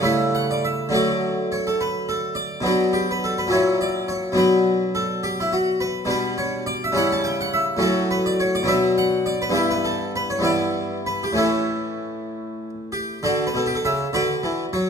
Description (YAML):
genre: classical, baroque-style suite movement for harpsichord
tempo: 69 BPM (dotted quarters)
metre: 6/8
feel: rubato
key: D major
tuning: A4 = 441 Hz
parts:
  - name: harpsichord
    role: solo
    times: 0.0-14.9 s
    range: G2 to A5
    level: -20 LUFS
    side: equal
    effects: none
room: moderate recital hall reverb, RT60 1.4 s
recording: none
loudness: -19 LUFS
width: side -6 dB against mid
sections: 0.0-13.2 A section; 13.2-14.9 B section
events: none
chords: 0.0 A7/C#; 0.9 D; 2.7 Bm; 3.5 F#7/A#; 4.4 Bm; 6.1 G/B; 7.0 C#dim; 7.8 F#m/A; 8.7 Bm; 9.6 Em7/G; 11.4 A; 13.2 D; 14.1 Bm/D